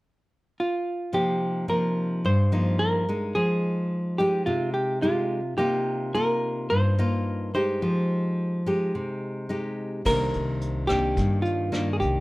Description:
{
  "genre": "bossa nova",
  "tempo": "108 BPM",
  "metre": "4/4",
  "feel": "straight",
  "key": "C minor",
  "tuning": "A4 = 440 Hz",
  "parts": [
    { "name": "hollow-body jazz guitar", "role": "melody", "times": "0.6-12.2 s", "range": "F4 to C5", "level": "-26 LUFS", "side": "right 1 dB", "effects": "plate reverb" },
    { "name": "nylon-string guitar", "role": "accompaniment", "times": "1.1-12.2 s", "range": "G2 to G4", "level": "-25 LUFS", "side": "equal", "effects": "none" },
    { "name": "upright bass", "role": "bass", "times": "10.1-12.2 s", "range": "C2 to G2", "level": "-29 LUFS", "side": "equal", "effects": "none" },
    { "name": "vintage brush drum kit", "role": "drums", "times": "10.1-12.1 s", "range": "crash cymbal, hi-hat, kick drum, rim click", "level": "-32 LUFS", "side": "equal", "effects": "none" }
  ],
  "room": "moderate large studio reverb, RT60 0.9 s",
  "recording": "none",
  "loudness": "-23 LUFS",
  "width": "side -20 dB against mid",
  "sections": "0.0-1.1 A section; 1.1-10.1 B section; 10.1-12.2 C section",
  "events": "none",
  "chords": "0.0 N.C.; 1.1 Cm7; 3.4 Fm9; 5.6 Cm7; 7.8 Fm9; 10.1 Cm9"
}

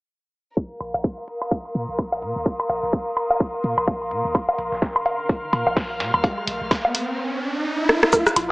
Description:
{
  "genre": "minimal techno",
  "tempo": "127 BPM",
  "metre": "4/4",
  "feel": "swing 58% on 16ths",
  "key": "unclear",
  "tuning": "A4 = 441 Hz",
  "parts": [
    { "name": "electronic kick drum", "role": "drums", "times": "0.6-8.2 s", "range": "none", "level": "-22 LUFS", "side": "equal", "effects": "studio ambience" },
    { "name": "muted studio string section", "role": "texture", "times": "0.6-8.5 s", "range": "Bb4 to F6", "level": "-27 LUFS", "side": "equal", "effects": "sidechain pumping" },
    { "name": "punchy sub bass", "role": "bass", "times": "0.8-8.5 s", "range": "Bb1 to Bb2", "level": "-31 LUFS", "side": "equal", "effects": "sidechain pumping" },
    { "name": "garage drum kit", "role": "drums", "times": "0.8-8.5 s", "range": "hi-hat, rim click, shaker", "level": "-18 LUFS", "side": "equal", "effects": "studio ambience" },
    { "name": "electronic woodblock and rim click", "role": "percussion", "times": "0.8-8.5 s", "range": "none", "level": "-22 LUFS", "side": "equal", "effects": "studio ambience, tape echo" },
    { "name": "dusty soul sampler-style drum kit", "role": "drums", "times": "4.3-8.5 s", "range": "hi-hat, snare drum", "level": "-32 LUFS", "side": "equal", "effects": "sidechain pumping on hats, high-pass filter on hats, studio ambience, high-pass filter on snare" },
    { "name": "riser", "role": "sound effects", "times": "6.1-8.1 s", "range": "none", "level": "-26 LUFS", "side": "right 1 dB", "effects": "none" },
    { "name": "resonant blip pluck", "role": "riff", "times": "8.1-8.2 s", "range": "Bb4", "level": "-18 LUFS", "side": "right 1 dB", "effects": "phaser, sidechain pumping" }
  ],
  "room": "light reverb",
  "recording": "dry, gritty hardware recording, low-pass filter, small speaker sound",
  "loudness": "-20 LUFS",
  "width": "side -23 dB against mid",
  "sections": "0.6-8.1 A section",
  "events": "filter sweep on sub bass 0.6-8.1; filter sweep 0.6-8.1; riser 6.1-8.1; drum fill 7.9",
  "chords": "0.6 Bbsus4"
}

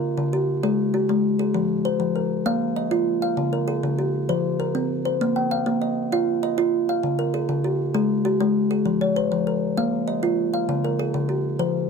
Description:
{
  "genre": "southern african traditional",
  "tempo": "131 BPM (dotted quarters)",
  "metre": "12/8",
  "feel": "straight",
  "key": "unclear",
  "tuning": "A4 = 440 Hz",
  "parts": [
    { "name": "kalimba", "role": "solo", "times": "0.0-11.9 s", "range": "Db3+43c to G5-43c", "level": "-20 LUFS", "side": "left 1 dB", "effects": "none" }
  ],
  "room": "light reverb",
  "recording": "close, detailed microphones",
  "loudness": "-20 LUFS",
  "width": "side -5 dB against mid",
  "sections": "0.0-11.9 A section",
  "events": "none",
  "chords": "0.0 Db5; 1.5 Fm; 2.5 Bb5; 3.4 Db; 4.3 F5; 5.2 Bb5; 7.0 Db5; 8.9 Fm; 9.8 Bb5; 10.7 Db"
}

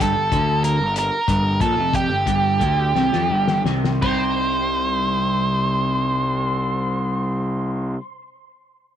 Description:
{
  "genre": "psychedelic rock",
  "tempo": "54-64 BPM (dotted quarters)",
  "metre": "6/8",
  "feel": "straight",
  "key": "C dorian",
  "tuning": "A4 = 440 Hz",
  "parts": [
    { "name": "octave-fuzz lead guitar", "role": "melody", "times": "0.0-7.9 s", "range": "G4 to C5", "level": "-22 LUFS", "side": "right 2 dB", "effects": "distortion, tape echo" },
    { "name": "electric guitar at the edge of break-up", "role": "riff", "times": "0.0-8.0 s", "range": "F2 to G4", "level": "-23 LUFS", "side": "left 1 dB", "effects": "flanger, double-tracked left and right" },
    { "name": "fuzz picked electric bass", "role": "bass", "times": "0.0-7.9 s", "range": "F1 to F2", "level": "-25 LUFS", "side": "equal", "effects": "overdrive" },
    { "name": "cloth-damped thuddy drum kit", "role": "drums", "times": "0.0-4.2 s", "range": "hi-hat, kick drum, snare drum, splash cymbal", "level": "-26 LUFS", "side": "left 4 dB", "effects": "none" }
  ],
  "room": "light reverb",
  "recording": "1960s-style stereo",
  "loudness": "-18 LUFS",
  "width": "side -10 dB against mid",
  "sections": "0.0-4.0 A section; 4.0-8.5 B section",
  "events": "slowing down 0.0-4.0; drum fill 2.9-4.0",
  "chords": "0.0 G5; 4.0 Cm"
}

